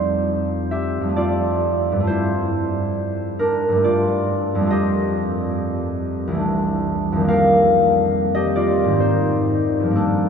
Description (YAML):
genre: classical, solo harp piece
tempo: 69 BPM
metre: 3/4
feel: uneven beats, rubato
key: unclear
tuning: A4 = 442 Hz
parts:
  - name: concert harp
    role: solo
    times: 0.0-10.3 s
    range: C2 to F5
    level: -17 LUFS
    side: equal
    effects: none
room: wet cathedral reverb, RT60 6.4 s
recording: heard from further back in the room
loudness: -17 LUFS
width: side -6 dB against mid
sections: 0.0-10.3 A section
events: none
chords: 0.0 Fadd9; 2.1 Gm9; 4.7 F9; 6.4 C69; 7.3 F9sus4; 9.0 Abmaj7